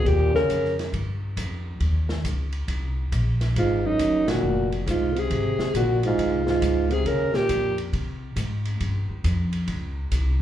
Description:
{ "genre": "jazz, small-group swing and bop", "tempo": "137 BPM", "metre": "4/4", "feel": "swing 66% on 8ths", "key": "unclear", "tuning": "A4 = 440 Hz", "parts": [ { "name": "breathy alto saxophone", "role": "melody", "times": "0.0-0.8, 3.6-7.8 s", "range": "Eb4 to Bb4", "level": "-24 LUFS", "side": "left 1 dB", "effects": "slapback echo" }, { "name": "breathy trombone", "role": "second line", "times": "0.0-0.7, 3.6-7.8 s", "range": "Gb2 to Db3", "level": "-26 LUFS", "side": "right 4 dB", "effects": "slapback echo" }, { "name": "upright bass", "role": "bass", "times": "0.0-10.4 s", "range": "F1 to C3", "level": "-25 LUFS", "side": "equal", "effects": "none" }, { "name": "open jazz drum kit", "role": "drums", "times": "0.1-10.2 s", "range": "hi-hat, kick drum, ride cymbal, snare drum", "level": "-33 LUFS", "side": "right 1 dB", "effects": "none" } ], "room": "light reverb", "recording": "live gig heard through the venue's PA, club reverb", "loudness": "-22 LUFS", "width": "side -11 dB against mid", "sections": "0.0-10.4 A section", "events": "band accent 4.2", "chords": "0.1 Eb13; 3.6 Ab13; 7.1 Eb13", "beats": "| 0.06 0.49 0.93 1.37 | 1.80 2.24 2.68 3.12 | 3.56 3.99 4.43 4.87 | 5.31 5.74 6.18 6.62 | 7.06 7.49 7.93 8.37 | 8.81 9.24 9.68 10.12" }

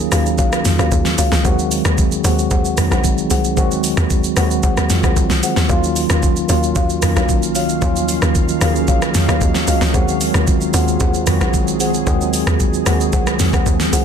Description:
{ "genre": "amapiano", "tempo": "113 BPM", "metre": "4/4", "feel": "straight", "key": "unclear", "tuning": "A4 = 439 Hz", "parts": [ { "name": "mellow tine electric piano", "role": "accompaniment", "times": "0.0-14.0 s", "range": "Eb3 to F5", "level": "-19 LUFS", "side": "right 1 dB", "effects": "medium stereo tremolo" }, { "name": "tight log drum bass", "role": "bass", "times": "0.0-14.0 s", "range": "Bb1 to Eb2", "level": "-20 LUFS", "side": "equal", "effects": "none" }, { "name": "buzzing marimba with soft mallets", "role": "stabs", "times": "0.1-14.0 s", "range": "Gb4 to Gb5", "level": "-24 LUFS", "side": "left 5 dB", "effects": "tape echo" }, { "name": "smooth R&B drum kit", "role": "drums", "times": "0.1-14.0 s", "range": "hi-hat, kick drum, rim click, shaker, snare drum, toms", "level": "-18 LUFS", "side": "equal", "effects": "none" }, { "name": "deep dark ambient pad", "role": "sustained chords", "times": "6.7-14.0 s", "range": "Eb3 to F5", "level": "-25 LUFS", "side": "right 2 dB", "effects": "chorus, built-in reverb, sidechain pumping" } ], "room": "light reverb, digital ambience", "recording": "dense, heavily limited modern master", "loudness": "-14 LUFS", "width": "side -7 dB against mid", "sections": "0.0-14.0 A section", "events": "none", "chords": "0.0 Ebm9; 1.4 Ab7; 5.7 Ebm9; 9.9 Ab7", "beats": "0.39 0.92 | 1.45 1.98 2.51 3.04 | 3.57 4.10 4.63 5.17 | 5.70 6.23 6.76 7.29 | 7.82 8.35 8.88 9.41 | 9.94 10.47 11.01 11.54 | 12.07 12.60 13.13 13.66" }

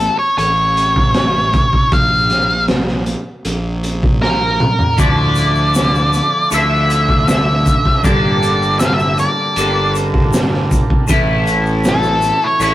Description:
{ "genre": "psychedelic rock", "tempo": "78 BPM", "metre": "4/4", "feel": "straight", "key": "A phrygian dominant", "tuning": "A4 = 436 Hz", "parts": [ { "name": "octave-fuzz lead guitar", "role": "melody", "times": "0.0-12.7 s", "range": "A4 to F5", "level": "-15 LUFS", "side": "equal", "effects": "distortion" }, { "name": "fuzz fingered electric bass", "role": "bass", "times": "0.0-12.7 s", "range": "G1 to D2", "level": "-19 LUFS", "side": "equal", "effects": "overdrive" }, { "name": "crunchy breakbeat drum kit", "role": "drums", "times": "0.0-12.7 s", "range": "hi-hat, kick drum, snare drum, toms", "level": "-17 LUFS", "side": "equal", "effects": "none" }, { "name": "overdriven combo organ", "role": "sustained chords", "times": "5.0-12.7 s", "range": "E3 to A4", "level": "-26 LUFS", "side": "right 5 dB", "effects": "none" }, { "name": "twangy electric guitar", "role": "riff", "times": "5.0-12.7 s", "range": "G2 to A4", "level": "-19 LUFS", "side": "left 1 dB", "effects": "rotary speaker" }, { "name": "egg shaker", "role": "percussion", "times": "5.0-12.7 s", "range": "none", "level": "-30 LUFS", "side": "left 6 dB", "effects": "none" } ], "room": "light reverb", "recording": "rough rehearsal-room recording, warm saturation", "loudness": "-12 LUFS", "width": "side -14 dB against mid", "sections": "0.0-12.7 A section", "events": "drum fill 4.2-5.0", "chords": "0.0 A; 1.9 Bb5; 5.0 Dmadd9; 8.0 Gmadd9; 11.1 A", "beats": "0.38 1.15 | 1.92 2.69 3.45 4.22 | 4.98 5.75 6.51 7.28 | 8.04 8.81 9.57 10.33 | 11.09 11.86 12.62" }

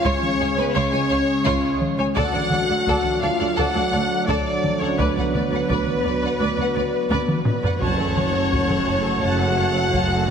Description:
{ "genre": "cinematic, hybrid orchestral and electronic film score", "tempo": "85 BPM", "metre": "4/4", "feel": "straight", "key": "F# minor", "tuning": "A4 = 436 Hz", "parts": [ { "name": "warm symphonic violin section", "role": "melody", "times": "0.0-10.3 s", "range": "B4 to F#5", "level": "-24 LUFS", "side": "left 2 dB", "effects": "none" }, { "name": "warm symphonic violin section", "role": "second line", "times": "0.0-10.3 s", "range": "E#4 to A5", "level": "-30 LUFS", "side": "left 2 dB", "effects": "none" }, { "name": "dark French horn section", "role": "sustained chords", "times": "0.0-10.3 s", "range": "B3 to F#4", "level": "-26 LUFS", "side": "left 3 dB", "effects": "none" }, { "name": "dark trombone section", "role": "sustained chords", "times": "0.0-10.3 s", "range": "C#3 to A3", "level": "-29 LUFS", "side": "right 4 dB", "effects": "none" }, { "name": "warbly tape-like pad", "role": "sustained chords", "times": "0.0-10.3 s", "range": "F#3 to D5", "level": "-30 LUFS", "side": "equal", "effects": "chorus, built-in reverb, phaser" }, { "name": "warm symphonic cello section", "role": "bass", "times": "0.0-10.3 s", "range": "C#2 to F#2", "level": "-29 LUFS", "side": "right 3 dB", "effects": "none" }, { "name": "taiko ensemble", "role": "drums", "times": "0.0-10.3 s", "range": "none", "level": "-26 LUFS", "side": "equal", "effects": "none" }, { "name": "warm symphonic viola section", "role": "accompaniment", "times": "0.1-10.3 s", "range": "F#4 to D5", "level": "-28 LUFS", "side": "right 1 dB", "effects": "none" }, { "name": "rich symphonic double bass section", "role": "bass", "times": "0.1-10.3 s", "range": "F#1 to D2", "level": "-28 LUFS", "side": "right 4 dB", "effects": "none" } ], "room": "wet scoring stage reverb, RT60 2.0 s", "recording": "heavily compressed radio sound", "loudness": "-18 LUFS", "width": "side -7 dB against mid", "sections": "0.0-10.3 A section", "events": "drum fill 7.1-7.8", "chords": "0.0 C#; 2.2 D; 5.0 Bm/D; 7.8 F#m", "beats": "0.05 0.75 1.46 | 2.17 2.87 3.58 4.28 | 4.99 5.70 6.40 7.11 | 7.81 8.52 9.22 9.93" }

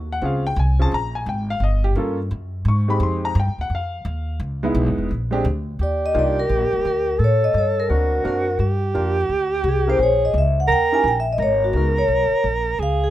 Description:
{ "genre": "jazz", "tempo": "172 BPM", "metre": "4/4", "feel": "swing 64% on 8ths", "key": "Eb major from 5.8 s", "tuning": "A4 = 440 Hz", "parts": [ { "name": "upright bass", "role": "bass", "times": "0.0-13.1 s", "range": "Eb1 to A2", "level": "-21 LUFS", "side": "equal", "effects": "none" }, { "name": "warm concert grand piano", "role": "accompaniment", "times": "0.1-12.0 s", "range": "Ab3 to Db6", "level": "-25 LUFS", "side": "equal", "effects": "plate reverb" }, { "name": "vibraphone with medium mallets", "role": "melody", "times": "5.8-13.1 s", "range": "Gb4 to Ab5", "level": "-20 LUFS", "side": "left 1 dB", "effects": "plate reverb" }, { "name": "warm alto saxophone", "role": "second line", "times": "5.8-13.1 s", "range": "F#4 to Bb4", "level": "-23 LUFS", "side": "right 4 dB", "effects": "none" } ], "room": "light reverb", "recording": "rough home demo mix", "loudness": "-18 LUFS", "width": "side -13 dB against mid", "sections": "0.0-5.8 A section; 5.8-13.1 B section", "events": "none", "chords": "0.2 Bbm9; 1.6 Gm7b5; 2.3 Gbsus2; 3.0 Fm9; 4.4 Dbm7; 5.1 Bb7; 5.8 Ebmaj7; 7.2 Eb7#11 (rootless); 7.9 D7b13; 8.6 Gm7; 10.0 Bbm7b5; 10.7 Eb7b9; 11.4 Abm9", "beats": "| 0.22 0.57 0.92 1.27 | 1.62 1.97 2.31 2.66 | 3.01 3.36 3.71 4.06 | 4.41 4.76 5.11 5.46 | 5.80 6.15 6.50 6.85 | 7.20 7.55 7.90 8.25 | 8.60 8.95 9.30 9.65 | 10.00 10.35 10.70 11.04 | 11.39 11.74 12.09 12.44 | 12.79" }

